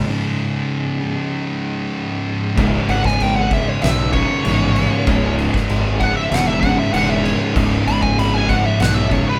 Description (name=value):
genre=stoner and doom metal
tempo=96 BPM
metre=4/4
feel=straight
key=unclear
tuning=A4 = 440 Hz
part: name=tonewheel organ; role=sustained chords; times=0.0-9.4 s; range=C#3 to E4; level=-33 LUFS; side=equal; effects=none
part: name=thick fuzz guitar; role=riff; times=0.0-9.4 s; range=C#2 to C#3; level=-27 LUFS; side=equal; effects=none
part: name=thick fuzz guitar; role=riff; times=0.0-9.4 s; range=C#2 to C#3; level=-24 LUFS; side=equal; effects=distortion
part: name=crunchy overdriven guitar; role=riff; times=2.6-9.4 s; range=C#2 to C#3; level=-30 LUFS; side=equal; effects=none
part: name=fuzz fingered electric bass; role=bass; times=2.6-9.2 s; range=C#1 to B1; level=-23 LUFS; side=equal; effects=overdrive
part: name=oversized low-tuned drum kit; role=drums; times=2.6-9.3 s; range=crash cymbal, kick drum, snare drum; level=-25 LUFS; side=equal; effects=none
part: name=fuzz lead guitar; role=melody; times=2.9-9.4 s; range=B4 to B5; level=-23 LUFS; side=equal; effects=wah, distortion
room=moderate large studio reverb, RT60 0.8 s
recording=band playing live in one room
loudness=-18 LUFS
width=mono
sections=0.0-2.6 A section; 2.6-9.4 B section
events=break 0.1-2.6; lead electric guitar solo 2.6-9.4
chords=0.0 C#5; 2.6 C#m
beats=| 0.05 0.68 1.31 1.94 | 2.57 3.19 3.82 4.44 | 5.07 5.69 6.32 6.94 | 7.56 8.18 8.80